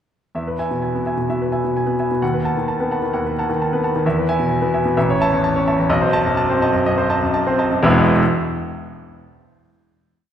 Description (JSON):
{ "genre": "classical, virtuoso piano study", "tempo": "115-134 BPM", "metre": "4/4", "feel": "rubato", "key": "E major", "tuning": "A4 = 440 Hz", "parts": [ { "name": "clear grand piano", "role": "solo", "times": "0.3-8.2 s", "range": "E1 to A5", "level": "-16 LUFS", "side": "equal", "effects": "none" } ], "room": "wet scoring stage reverb, RT60 1.8 s", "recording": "heard from further back in the room", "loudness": "-16 LUFS", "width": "side -9 dB against mid", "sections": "0.3-7.8 A section; 7.8-9.8 final chord", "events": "slowing down 3.1-7.8", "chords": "0.3 E; 2.2 B7/D#; 4.0 E; 5.0 A; 5.9 B7b9; 7.8 E" }